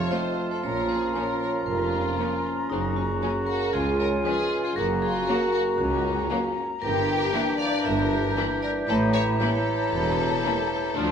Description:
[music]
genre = cinematic, playful, whimsical film cue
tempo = 116 BPM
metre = 4/4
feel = straight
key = unclear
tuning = A4 = 440 Hz
[part]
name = vibraphone with medium hard mallets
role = melody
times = 0.0-11.1 s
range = Eb4 to F5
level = -32 LUFS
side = right 3 dB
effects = none
[part]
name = warm studio violin section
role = melody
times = 0.0-11.1 s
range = C4 to D5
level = -31 LUFS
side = left 5 dB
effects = none
[part]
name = dark clarinet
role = second line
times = 0.0-11.1 s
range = C4 to E4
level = -33 LUFS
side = left 2 dB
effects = none
[part]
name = silver concert flute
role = second line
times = 0.0-11.1 s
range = Ab5 to Bb5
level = -32 LUFS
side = left 3 dB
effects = none
[part]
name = warm oboe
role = second line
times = 0.0-11.1 s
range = F4 to G4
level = -34 LUFS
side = right 1 dB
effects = none
[part]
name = dark bassoon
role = accompaniment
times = 0.0-11.1 s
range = Db3 to F3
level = -32 LUFS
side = right 3 dB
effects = none
[part]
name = mellow French horn section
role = sustained chords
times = 0.0-10.6 s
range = Ab3 to G4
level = -33 LUFS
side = left 3 dB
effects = none
[part]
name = dark tuba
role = bass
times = 0.0-11.1 s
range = E1 to D2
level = -34 LUFS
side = right 2 dB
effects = none
[part]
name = rich chamber cello section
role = bass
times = 0.0-11.1 s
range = Db2 to Bb2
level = -31 LUFS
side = right 2 dB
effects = none
[part]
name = rich chamber double bass section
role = bass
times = 0.0-11.1 s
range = E1 to D2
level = -34 LUFS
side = right 3 dB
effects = none
[part]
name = rich studio violin section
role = second line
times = 0.1-11.1 s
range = Bb3 to F4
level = -34 LUFS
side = left 5 dB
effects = none
[part]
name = rich chamber viola section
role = accompaniment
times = 0.1-11.1 s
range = E3 to Bb3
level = -35 LUFS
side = right 1 dB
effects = none
[sound]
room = wet recital hall reverb, RT60 1.4 s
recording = minimal, uncompressed stereo recording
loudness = -22 LUFS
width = side -7 dB against mid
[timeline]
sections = 0.0-11.1 A section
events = none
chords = 0.0 F; 0.6 Bbm; 2.7 Gb; 3.7 Db; 4.8 Gb; 6.8 Em7b5/G; 8.9 A7b9

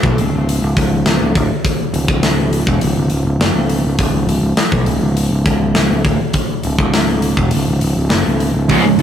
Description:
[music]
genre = heavy metal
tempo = 102 BPM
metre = 4/4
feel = straight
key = C# minor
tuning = A4 = 440 Hz
[part]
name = overdriven picked electric bass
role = bass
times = 0.0-9.0 s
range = C#1 to B1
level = -15 LUFS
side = equal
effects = none
[part]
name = tight metal drum kit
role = drums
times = 0.0-9.0 s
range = hi-hat, kick drum, snare drum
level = -16 LUFS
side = left 1 dB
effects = none
[part]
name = high-gain distorted guitar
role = riff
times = 8.7-9.0 s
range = C#2 to G#2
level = -18 LUFS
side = left 8 dB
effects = distortion
[part]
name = sludgy distorted guitar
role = riff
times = 8.7-9.0 s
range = C#2 to G#2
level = -12 LUFS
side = right 6 dB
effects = overdrive
[sound]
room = little or no reverb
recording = rough rehearsal-room recording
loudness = -13 LUFS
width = side -9 dB against mid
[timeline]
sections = 0.0-9.0 A section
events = none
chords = none

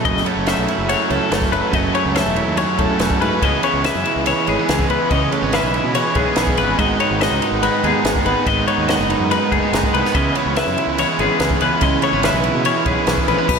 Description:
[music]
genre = math rock and midwest emo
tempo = 143 BPM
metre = 4/4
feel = straight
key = unclear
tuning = A4 = 440 Hz
[part]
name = twelve-string electric guitar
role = accompaniment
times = 0.0-13.6 s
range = F#2 to B4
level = -22 LUFS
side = right 7 dB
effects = warbly pitch drift, slapback echo
[part]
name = twelve-string electric guitar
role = arpeggios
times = 0.0-13.6 s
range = G#4 to E5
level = -20 LUFS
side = left 8 dB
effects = tape echo, slapback echo
[part]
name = biting overdriven guitar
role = riff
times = 0.0-13.5 s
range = F#2 to E4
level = -21 LUFS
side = right 1 dB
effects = spring reverb, slapback echo
[part]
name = fuzz fingered electric bass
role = bass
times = 0.1-13.6 s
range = E1 to B2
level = -25 LUFS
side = equal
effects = overdrive
[part]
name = compact cocktail drum kit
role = drums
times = 0.1-13.6 s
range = crash cymbal, kick drum, ride cymbal, snare drum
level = -23 LUFS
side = equal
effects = none
[sound]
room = wet recital hall reverb, RT60 1.3 s, small room ambience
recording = big arena sound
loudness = -15 LUFS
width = side -6 dB against mid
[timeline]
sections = 0.1-13.5 A section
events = none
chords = 0.1 F#m7; 3.4 C#m7; 6.8 G#m7; 10.2 C#m7

